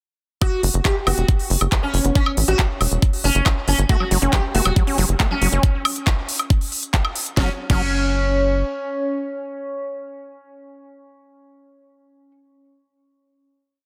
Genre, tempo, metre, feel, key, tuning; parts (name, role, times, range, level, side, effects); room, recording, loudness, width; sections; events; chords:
psychedelic trance; 138 BPM; 4/4; straight; F# phrygian; A4 = 440 Hz
sitar; melody; 0.4-12.3 s; C#4 to G4; -27 LUFS; equal; phaser, sidechain pumping, tape echo
drum and bass drum kit; drums; 0.4-7.8 s; crash cymbal, handclaps, hi-hat, snare drum, woodblock; -26 LUFS; equal
electronic kick drum; drums; 0.4-7.8 s; -21 LUFS; equal
tight sequencer bass; bass; 0.6-8.6 s; E1 to A1; -22 LUFS; equal
resonant blip pluck; second line; 1.1-4.7 s; B3; -39 LUFS; equal
overdriven acid bass; riff; 3.9-7.8 s; F#3 to C#4; -28 LUFS; equal; sidechain pumping, dub echo
light reverb; dense, heavily limited modern master; -20 LUFS; mono
0.4-7.4 groove; 7.4-10.8 final chord
0.4 F#5